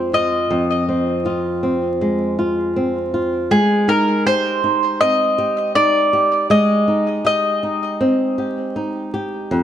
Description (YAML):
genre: folktronica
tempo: 80 BPM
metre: 4/4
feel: straight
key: unclear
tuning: A4 = 440 Hz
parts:
  - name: mandolin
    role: melody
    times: 0.0-9.1 s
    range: Ab4 to Eb5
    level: -17 LUFS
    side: equal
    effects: digital delay
  - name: flamenco guitar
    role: arpeggios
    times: 0.0-9.6 s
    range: F2 to G4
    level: -19 LUFS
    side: equal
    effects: low-pass filter, digital delay
room: moderate echo chamber reverb, RT60 1.8 s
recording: vinyl crackle, faint mains hum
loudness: -16 LUFS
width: side -10 dB against mid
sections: 0.0-9.6 A section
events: none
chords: 0.0 Fm7; 3.5 Abmaj7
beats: | 0.51 1.26 2.01 2.76 | 3.51 4.26 5.01 5.76 | 6.51 7.26 8.01 8.76 | 9.51